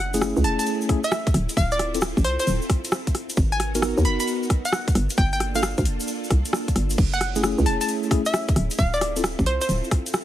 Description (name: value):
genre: UK garage, two-step garage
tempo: 133 BPM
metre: 4/4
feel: swing 67% on 16ths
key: unclear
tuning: A4 = 440 Hz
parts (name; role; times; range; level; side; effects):
- hollow square pluck; melody; 0.0-9.7 s; C5 to B5; -27 LUFS; equal; chorus, ping-pong delay
- soft string machine; sustained chords; 0.0-10.2 s; A3 to A#4; -33 LUFS; right 1 dB; ensemble chorus, sidechain pumping
- hollow knocking FM bass; bass; 0.0-9.8 s; D1 to D#2; -24 LUFS; equal; none
- mellow tine electric piano; stabs; 0.1-9.2 s; A3 to A#4; -26 LUFS; equal; medium stereo tremolo, ping-pong delay
- garage drum kit; drums; 0.1-10.2 s; crash cymbal, hi-hat, rim click; -27 LUFS; equal; small room ambience
- tube shaker; percussion; 0.1-10.2 s; none; -35 LUFS; right 1 dB; none
- electronic kick drum; drums; 0.9-10.0 s; none; -21 LUFS; equal; small room ambience
room: light reverb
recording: vinyl crackle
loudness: -20 LUFS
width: side -12 dB against mid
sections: 0.0-10.2 A section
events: none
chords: 0.0 F#m9; 1.3 Dm9; 3.1 G#m9; 5.0 Gm9; 7.0 F#m9; 8.6 Dm9